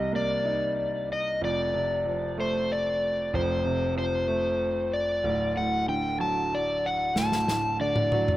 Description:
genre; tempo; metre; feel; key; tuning
six-eight pop ballad; 63 BPM (dotted quarters); 6/8; straight; unclear; A4 = 438 Hz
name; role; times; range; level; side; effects
overdriven slide guitar; melody; 0.0-8.4 s; C5 to A5; -26 LUFS; left 2 dB; plate reverb, digital delay
clear concert grand piano; accompaniment; 0.0-8.4 s; D1 to Eb4; -29 LUFS; right 2 dB; plate reverb
natural country drum kit; drums; 7.2-8.4 s; snare drum, toms; -28 LUFS; equal; none
room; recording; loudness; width
moderate studio reverb, RT60 0.6 s; rough home demo mix; -24 LUFS; side -15 dB against mid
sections
0.0-8.4 A section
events
drum fill 7.2-8.4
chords
0.0 Cm7; 1.4 F; 5.2 D

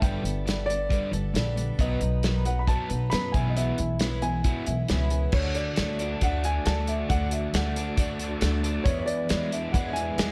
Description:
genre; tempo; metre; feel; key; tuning
folk rock and heartland rock; 136 BPM; 4/4; straight; unclear; A4 = 440 Hz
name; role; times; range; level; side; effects
dark baby grand piano; melody; 0.0-10.3 s; C#5 to B5; -35 LUFS; equal; tape echo
picked twelve-string acoustic guitar; accompaniment; 0.0-10.3 s; E2 to B4; -37 LUFS; equal; none
crunchy overdriven guitar; riff; 0.0-10.3 s; E2 to D4; -34 LUFS; equal; none
upright bass; bass; 0.0-10.3 s; G1 to F#2; -31 LUFS; equal; none
loose indie drum kit; drums; 0.0-10.3 s; crash cymbal, hi-hat, kick drum, snare drum; -30 LUFS; equal; none
bright tonewheel organ; sustained chords; 5.3-10.3 s; D4 to D5; -44 LUFS; equal; none
room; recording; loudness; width
light reverb; dark, warm production; -26 LUFS; mono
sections
0.0-5.3 A section; 5.3-10.3 B section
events
none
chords
0.0 Gadd9; 1.8 B; 3.3 E6/B; 5.3 D; 8.9 E7

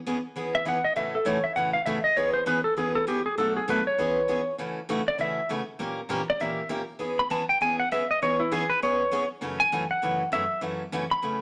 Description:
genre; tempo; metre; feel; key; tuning
country; 199 BPM; 4/4; swing 62% on 8ths; E major; A4 = 441 Hz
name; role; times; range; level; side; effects
picked steel-string acoustic guitar; accompaniment; 0.1-11.4 s; F#2 to A#4; -32 LUFS; equal; none
clean lap steel guitar; melody; 0.5-11.4 s; E4 to B5; -27 LUFS; equal; none
room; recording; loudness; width
wet studio reverb, RT60 0.8 s; none; -27 LUFS; mono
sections
0.0-11.4 A section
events
electric slide guitar solo 0.0-11.4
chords
0.0 E6; 1.0 A6; 2.2 E6; 3.4 Bm7; 4.0 E6; 4.6 A6; 5.8 A#dim7; 7.0 E6; 9.4 F#m7

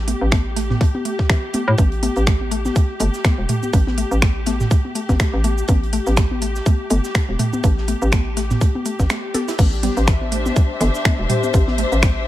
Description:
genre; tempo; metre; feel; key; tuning
minimal techno; 123 BPM; 4/4; swing 57% on 16ths; A minor; A4 = 438 Hz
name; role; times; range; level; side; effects
hollow knocking FM bass; bass; 0.0-12.3 s; E1 to A2; -20 LUFS; equal; sidechain pumping
warm symphonic string section; texture; 0.0-12.3 s; D4 to E5; -26 LUFS; left 3 dB; sidechain pumping
mallet-like synth pluck; riff; 0.1-12.1 s; E3 to A4; -27 LUFS; equal; chorus, sidechain pumping, dub echo
big rock drum kit; drums; 0.1-12.2 s; hi-hat, snare drum; -36 LUFS; right 2 dB; sidechain pumping on hats, high-pass filter on hats, high-pass filter on snare, high-pass filter on room
minimal click drum kit; drums; 0.1-12.1 s; crash cymbal, finger snaps, hi-hat, shaker; -24 LUFS; equal; overdrive
electronic toms; percussion; 0.1-12.1 s; none; -26 LUFS; equal; none
electronic kick drum; drums; 0.3-12.1 s; none; -15 LUFS; equal; none
vibraphone with medium mallets; melody; 11.3-11.5 s; G4; -27 LUFS; left 7 dB; dub echo
room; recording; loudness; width
studio reverb; none; -16 LUFS; side -14 dB against mid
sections
0.0-9.6 A section; 9.6-12.3 B section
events
break 9.1-9.6; drop 9.6-12.3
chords
0.0 A5

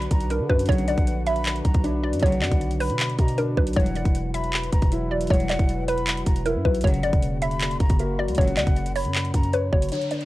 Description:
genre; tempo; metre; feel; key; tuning
hip hop, trap; 156 BPM; 4/4; half-time; B harmonic minor; A4 = 443 Hz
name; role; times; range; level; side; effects
hollow square pluck; melody; 0.0-10.2 s; A#4 to E5; -28 LUFS; equal; chorus, low-pass filter, tape echo
breathy concert flute; second line; 0.0-9.5 s; F#5 to B5; -34 LUFS; left 1 dB; tape echo
dark concert grand piano; accompaniment; 0.0-10.2 s; C#3 to C#5; -30 LUFS; left 1 dB; low-pass filter
dark analog pad; sustained chords; 0.0-9.9 s; C#3 to B4; -35 LUFS; equal; chorus
growling 808-style bass; bass; 0.0-9.9 s; E1 to D3; -27 LUFS; equal; none
trap drum kit; drums; 0.0-10.2 s; handclaps, hi-hat, kick drum; -22 LUFS; equal; none
warm symphonic string section; stabs; 0.7-8.7 s; B1 to F#3; -33 LUFS; left 2 dB; none
downlifter; sound effects; 9.9-10.2 s; none; -36 LUFS; equal; none
room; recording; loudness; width
digital ambience; dry, gritty hardware recording; -20 LUFS; side -17 dB against mid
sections
0.0-9.9 A section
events
break 9.9-10.2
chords
0.0 Bmadd9; 3.8 Emadd9; 6.8 F#

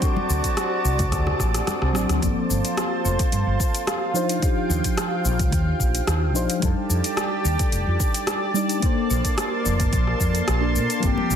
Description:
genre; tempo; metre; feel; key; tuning
sunset chillout; 109 BPM; 4/4; straight; G minor; A4 = 442 Hz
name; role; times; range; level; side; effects
warm flugelhorn; melody; 0.0-1.6, 11.0-11.4 s; F#4 to G4; -30 LUFS; equal; digital delay
mellow FM electric piano; accompaniment; 0.0-11.4 s; F3 to D5; -27 LUFS; moving between left 5 dB and right 3 dB; chorus, phaser, auto-pan, tape echo
lush unison pad; sustained chords; 0.0-11.4 s; Bb3 to C6; -27 LUFS; right 1 dB; chorus
deep house drum kit; drums; 0.0-11.4 s; hi-hat, rim click, shaker; -27 LUFS; left 1 dB; overdrive
electronic kick drum; drums; 0.0-11.1 s; none; -24 LUFS; equal; none
wind-like tuned noise texture; texture; 0.0-2.2, 11.0-11.4 s; D5 to D6; -38 LUFS; right 2 dB; built-in reverb
congas; percussion; 0.2-1.8, 11.2-11.4 s; none; -32 LUFS; left 3 dB; none
woody fretless electric bass; bass; 0.3-11.4 s; F1 to Bb2; -23 LUFS; equal; lush chorus
room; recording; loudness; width
moderate lush hall reverb, RT60 1.7 s, digital ambience; dense, heavily limited modern master; -20 LUFS; side -8 dB against mid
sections
0.0-2.2 A section; 2.2-11.4 B section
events
drum fill 1.1-2.2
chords
0.0 D7; 2.2 Gm11; 4.1 Ebmaj9; 6.6 F13; 8.8 Bbmaj9

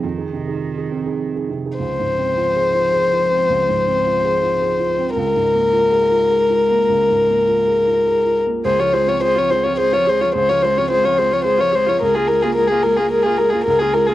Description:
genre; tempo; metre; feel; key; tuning
neoclassical piano and strings; 107 BPM; 3/4; rubato; Db major; A4 = 440 Hz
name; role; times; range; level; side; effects
dark cello; second line; 0.0-14.1 s; Eb3 to Bb3; -28 LUFS; right 6 dB; cassette tape
felt-muted upright piano; accompaniment; 0.0-14.1 s; Db2 to C5; -24 LUFS; right 5 dB; cassette tape
dark violin; melody; 1.8-14.1 s; Ab4 to Db5; -15 LUFS; left 2 dB; cassette tape
dark viola; accompaniment; 8.6-14.1 s; F4 to Ab4; -26 LUFS; right 7 dB; cassette tape
room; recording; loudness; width
moderate studio reverb, RT60 0.6 s; home recording on cassette; -15 LUFS; side -14 dB against mid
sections
0.0-1.8 A section; 1.8-8.6 B section; 8.6-14.1 C section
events
none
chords
0.0 Fm7 (rootless); 1.8 Dbmaj7; 5.2 Bbm7/Db; 8.6 Dbmaj7; 12.0 Bbm7/Db

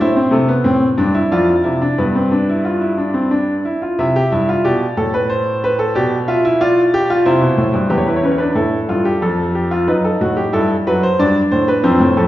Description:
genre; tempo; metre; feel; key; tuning
classical, baroque-style 3-part fugue for grand piano; 91 BPM; 3/4; straight; C major; A4 = 440 Hz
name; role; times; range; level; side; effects
clear baby grand piano; solo; 0.0-12.3 s; E2 to E5; -13 LUFS; equal; none
room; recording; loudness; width
wet recital hall reverb, RT60 1.7 s; heard from further back in the room, nothing above 7.6 kHz; -13 LUFS; side -14 dB against mid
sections
0.0-4.0 A section; 4.0-7.9 B section; 7.9-12.3 A section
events
none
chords
0.0 Am; 1.3 Dm7/F; 2.0 G; 4.0 C; 5.3 Amadd9; 5.9 G7/B; 7.3 C; 7.9 A7/E; 9.2 Fadd9; 9.9 B7/F#; 11.2 Gadd9

